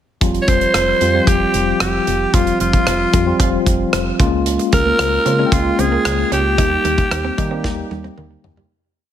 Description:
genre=1980s-style pop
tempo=113 BPM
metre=4/4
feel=straight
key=F minor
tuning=A4 = 440 Hz
part: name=mellow tine electric piano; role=accompaniment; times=0.2-8.7 s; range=F3 to G5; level=-20 LUFS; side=left 2 dB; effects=medium stereo tremolo
part: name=solid FM bass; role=bass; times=0.2-8.6 s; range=F1 to Eb3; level=-22 LUFS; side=equal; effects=none
part: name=modern studio drum kit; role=drums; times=0.2-8.7 s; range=hi-hat, kick drum, rim click, snare drum, toms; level=-19 LUFS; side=equal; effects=none
part: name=breathy alto saxophone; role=melody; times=0.4-8.1 s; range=F4 to Db5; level=-18 LUFS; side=right 1 dB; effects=none
part: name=direct-recorded clean electric guitar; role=riff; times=4.6-8.7 s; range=G3 to Eb4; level=-26 LUFS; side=right 7 dB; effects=lush chorus
room=light reverb, small room reverb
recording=none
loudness=-14 LUFS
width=side -10 dB against mid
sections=0.2-8.7 verse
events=fade-out 6.6-8.7; drum fill 7.6-8.7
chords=0.2 Fsus2; 4.2 Db6; 6.6 Eb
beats=| 0.21 0.74 1.27 1.81 | 2.34 2.87 3.40 3.93 | 4.46 4.99 5.52 6.05 | 6.58 7.12 7.65 8.18

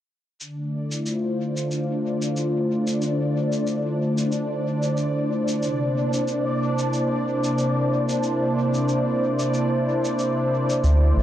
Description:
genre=ambient dub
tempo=92 BPM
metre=4/4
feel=swing 56% on 16ths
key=C mixolydian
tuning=A4 = 440 Hz
part: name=warm analog pad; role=sustained chords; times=0.4-11.2 s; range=C3 to C5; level=-22 LUFS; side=equal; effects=chorus
part: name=cabasa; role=drums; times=0.4-11.0 s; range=none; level=-36 LUFS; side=equal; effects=dub echo
part: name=bubbling stepped-filter texture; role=texture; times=0.4-11.2 s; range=D4 to D5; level=-28 LUFS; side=left 1 dB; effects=chorus, built-in reverb
part: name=round analog bass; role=bass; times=10.8-11.2 s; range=A1 to D2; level=-16 LUFS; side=equal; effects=none
room=light reverb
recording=echo-heavy mix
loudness=-21 LUFS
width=side -12 dB against mid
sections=0.4-11.2 A section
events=none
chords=0.4 Dm7; 5.6 C7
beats=| 0.41 1.06 1.71 2.36 | 3.02 3.67 4.32 4.97 | 5.62 6.28 6.93 7.58 | 8.23 8.88 9.54 10.19 | 10.84

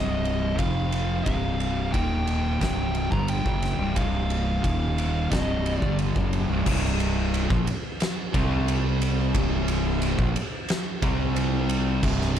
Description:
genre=stoner and doom metal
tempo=89 BPM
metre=4/4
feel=straight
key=C minor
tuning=A4 = 440 Hz
part: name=fuzz lead guitar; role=melody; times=0.0-5.9 s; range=Eb5 to Bb5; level=-32 LUFS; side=right 1 dB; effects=distortion, digital delay
part: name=fuzz guitar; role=riff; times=0.0-12.4 s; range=C2 to C4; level=-26 LUFS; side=equal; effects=distortion
part: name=fuzz fingered electric bass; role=bass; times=0.0-12.4 s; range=C1 to C2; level=-27 LUFS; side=equal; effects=overdrive
part: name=oversized low-tuned drum kit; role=drums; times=0.3-12.4 s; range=crash cymbal, kick drum, ride cymbal, snare drum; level=-28 LUFS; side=equal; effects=none
room=little or no reverb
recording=dark, warm production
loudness=-22 LUFS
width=side -9 dB against mid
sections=0.0-6.7 A section; 6.7-12.4 B section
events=none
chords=0.0 Cm; 0.6 F5; 1.3 C5; 1.9 Eb5; 2.6 C5; 4.6 Eb5; 5.3 Cm; 6.7 C5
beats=0.59 | 1.26 1.94 2.62 3.29 | 3.96 4.64 5.31 5.99 | 6.66 7.33 8.00 8.67 | 9.34 10.02 10.69 11.36 | 12.03

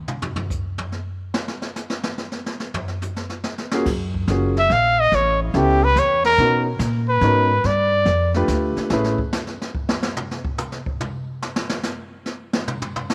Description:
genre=jazz, small-group swing and bop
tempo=143 BPM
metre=3/4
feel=swing 68% on 8ths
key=unclear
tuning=A4 = 440 Hz
part: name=jazz brush drum kit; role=drums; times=0.1-13.1 s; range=brushed snare drum, crash cymbal, hi-hat, kick drum, snare drum, toms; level=-28 LUFS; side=equal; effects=none
part: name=warm concert grand piano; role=accompaniment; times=3.7-9.2 s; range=A3 to B4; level=-26 LUFS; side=equal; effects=none
part: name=upright bass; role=bass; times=3.9-9.2 s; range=F#1 to B2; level=-24 LUFS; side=equal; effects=none
part: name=warm trumpet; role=melody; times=4.6-8.4 s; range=E4 to E#5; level=-19 LUFS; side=equal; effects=none
room=light reverb, small room ambience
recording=none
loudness=-21 LUFS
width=mono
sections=0.0-3.9 A section; 3.9-13.1 A section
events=trumpet solo 0.0-13.1; drum solo 0.0-3.9, 8.9-13.1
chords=0.0 N.C.; 2.6 Db; 3.9 F#maj7; 5.1 A9; 6.4 Bmaj9; 7.6 G9; 8.9 Amaj7; 10.2 N.C.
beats=| 0.09 0.51 0.93 | 1.34 1.76 2.19 | 2.60 3.02 3.44 | 3.87 4.29 4.71 | 5.12 5.54 5.96 | 6.38 6.80 7.22 | 7.64 8.06 8.48 | 8.90 9.32 9.74 | 10.16 10.58 11.00 | 11.42 11.84 12.26 | 12.68 13.10

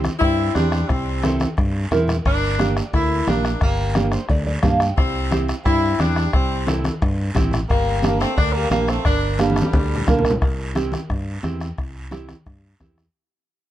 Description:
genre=latin, cumbia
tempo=176 BPM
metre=4/4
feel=straight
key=unclear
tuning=A4 = 441 Hz
part: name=nylon-string guitar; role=accompaniment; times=0.0-13.0 s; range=Bb3 to G5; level=-24 LUFS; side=right 4 dB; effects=none
part: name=modern bright fingered electric bass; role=bass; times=0.0-13.1 s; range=G1 to G2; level=-23 LUFS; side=equal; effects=none
part: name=bombo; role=percussion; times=0.0-13.1 s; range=none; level=-23 LUFS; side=left 1 dB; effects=none
part: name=congas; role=percussion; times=0.0-13.0 s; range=none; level=-26 LUFS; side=left 1 dB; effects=none
part: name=guiro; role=percussion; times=0.0-13.1 s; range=none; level=-36 LUFS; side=right 3 dB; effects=none
part: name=warm saxophone section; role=melody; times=0.2-10.3 s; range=D3 to E4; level=-23 LUFS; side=left 1 dB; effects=none
room=light reverb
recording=dark, warm production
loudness=-17 LUFS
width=side -13 dB against mid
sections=0.0-10.4 A section; 10.4-13.1 B section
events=nylon-string guitar fill 4.0-5.0; drum fill 9.4-10.4; fade-out 10.4-13.1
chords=0.0 C; 2.3 Gm; 5.0 C; 7.7 Gm; 10.4 C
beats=0.21 0.55 | 0.89 1.23 1.57 1.91 | 2.25 2.59 2.93 3.27 | 3.61 3.95 4.29 4.63 | 4.97 5.31 5.65 5.99 | 6.33 6.67 7.01 7.35 | 7.69 8.03 8.37 8.71 | 9.05 9.39 9.73 10.07 | 10.41 10.75 11.09 11.44 | 11.78 12.12 12.46 12.80

